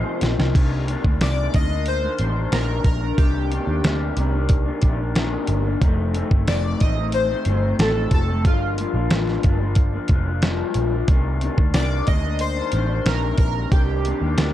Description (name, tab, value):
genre	indie pop, bedroom pop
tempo	91 BPM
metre	4/4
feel	straight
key	C dorian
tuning	A4 = 439 Hz
part	chorused retro synth keys	melody	0.0-14.5 s	F4 to Eb5	-27 LUFS	equal	lush chorus, tape echo
part	electric guitar through a small old amp	accompaniment	0.0-14.5 s	F2 to Eb4	-26 LUFS	left 4 dB	lush chorus, vibrato effect
part	vintage muted picked electric bass	bass	0.0-14.5 s	F1 to Eb2	-23 LUFS	equal	none
part	dusty soul sampler-style drum kit	drums	0.2-14.5 s	crash cymbal, hi-hat, kick drum, snare drum	-20 LUFS	equal	none
room	little or no reverb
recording	dark, warm production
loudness	-18 LUFS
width	side -12 dB against mid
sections	0.5-14.5 A section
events	drum fill 0.0-0.5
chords	0.0 Cm7; 0.5 Cm9; 5.8 F7; 8.4 Gm7; 11.1 Cm9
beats	| 0.55 1.21 1.86 2.52 | 3.18 3.84 4.50 5.16 | 5.82 6.47 7.13 7.79 | 8.45 9.11 9.77 10.43 | 11.08 11.74 12.40 13.06 | 13.72 14.38